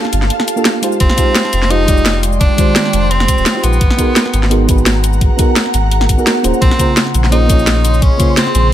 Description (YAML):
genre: liquid drum and bass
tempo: 171 BPM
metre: 4/4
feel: swing 54% on 16ths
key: unclear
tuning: A4 = 438 Hz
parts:
  - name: mellow FM electric piano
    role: accompaniment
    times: 0.0-8.7 s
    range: Db3 to D5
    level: -18 LUFS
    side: right 2 dB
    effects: chorus, tape echo
  - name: ethereal airy pad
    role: sustained chords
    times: 0.0-8.7 s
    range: Db3 to C6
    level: -21 LUFS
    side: equal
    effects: ensemble chorus, built-in reverb, sidechain pumping
  - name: drum and bass drum kit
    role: drums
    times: 0.0-8.6 s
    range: cabasa, hi-hat, snare drum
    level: -16 LUFS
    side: equal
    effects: overdrive, small room ambience
  - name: warm sub bass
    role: bass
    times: 0.1-8.7 s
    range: Eb1 to Bb1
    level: -14 LUFS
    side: equal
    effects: none
  - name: bright tenor saxophone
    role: melody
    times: 1.0-8.7 s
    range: B3 to Eb4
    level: -18 LUFS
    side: equal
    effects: dub echo
  - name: electronic kick drum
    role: drums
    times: 1.0-8.3 s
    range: none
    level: -13 LUFS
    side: equal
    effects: overdrive, small room ambience
room: digital ambience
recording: none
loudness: -10 LUFS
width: side -12 dB against mid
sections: 0.0-8.7 A section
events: none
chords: 0.0 Gm9; 1.0 Fm9; 3.8 Abm9; 6.6 Bbm9